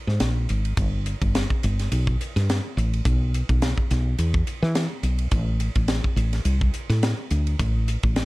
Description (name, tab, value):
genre	electric jazz fusion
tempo	106 BPM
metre	4/4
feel	swing 55% on 16ths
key	unclear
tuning	A4 = 440 Hz
part	woody fretless electric bass	bass	0.1-8.2 s	G1 to E3	-22 LUFS	equal	none
part	crisp fusion drum kit	drums	0.1-8.2 s	hi-hat, kick drum, ride cymbal, snare drum	-26 LUFS	equal	none
room	little or no reverb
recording	dark, warm production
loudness	-21 LUFS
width	side -21 dB against mid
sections	0.0-8.2 A section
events	none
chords	none